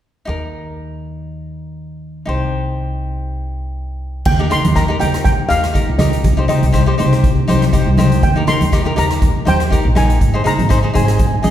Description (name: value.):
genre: calypso.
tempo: 121 BPM.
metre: 4/4.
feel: swing 54% on 16ths.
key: Eb major.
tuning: A4 = 440 Hz.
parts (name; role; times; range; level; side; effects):
cavaquinho; accompaniment; 0.3-11.5 s; Eb4 to Eb5; -21 LUFS; left 2 dB; none.
upright bass; bass; 0.3-11.5 s; Ab1 to Eb2; -18 LUFS; equal; none.
steel pan; melody; 4.3-11.5 s; Eb5 to C6; -20 LUFS; equal; none.
street-band drum kit; drums; 4.3-11.5 s; crash cymbal, hi-hat, kick drum, rim click; -18 LUFS; equal; none.
congas; percussion; 4.3-11.5 s; none; -20 LUFS; right 2 dB; none.
room: moderate concert hall reverb, RT60 1.8 s.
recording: heard from further back in the room.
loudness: -13 LUFS.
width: side -11 dB against mid.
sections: 0.3-4.3 A section; 4.3-11.5 B section.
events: none.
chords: 0.3 Eb5; 2.3 Cm; 4.3 Eb; 6.2 Cm; 8.2 Eb; 10.2 Abadd9.